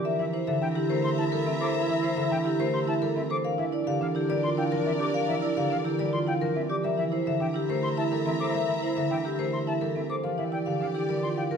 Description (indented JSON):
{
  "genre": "classical, minimalist pattern music",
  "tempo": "106 BPM",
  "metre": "3/4",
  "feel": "straight",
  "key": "C mixolydian",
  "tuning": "A4 = 440 Hz",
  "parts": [
    { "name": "vibraphone with medium hard mallets", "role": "melody", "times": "0.0-11.6 s", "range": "G4 to F5", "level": "-30 LUFS", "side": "left 7 dB", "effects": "none" },
    { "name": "concert harp", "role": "accompaniment", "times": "0.0-11.6 s", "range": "D3 to A3", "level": "-31 LUFS", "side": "left 1 dB", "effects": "none" },
    { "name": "marimba with medium mallets", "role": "arpeggios", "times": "0.0-11.6 s", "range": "C4 to Bb4", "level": "-30 LUFS", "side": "right 9 dB", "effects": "none" },
    { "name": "wooden-headed alto flute", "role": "second line", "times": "0.1-11.6 s", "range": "D4 to G4", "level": "-35 LUFS", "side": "right 2 dB", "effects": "none" },
    { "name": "clear symphonic string section", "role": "sustained chords", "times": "0.1-11.6 s", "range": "G4 to Bb5", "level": "-37 LUFS", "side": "left 1 dB", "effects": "none" },
    { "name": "concert flute", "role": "arpeggios", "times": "0.2-11.4 s", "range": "E5 to D6", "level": "-36 LUFS", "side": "left 2 dB", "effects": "none" }
  ],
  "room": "moderate recital hall reverb, RT60 1.7 s",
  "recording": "minimal, uncompressed stereo recording",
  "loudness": "-25 LUFS",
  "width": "side -6 dB against mid",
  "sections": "0.0-11.6 A section",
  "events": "none",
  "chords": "0.1 C13; 3.4 Bb69; 6.8 C13; 10.2 Bb6"
}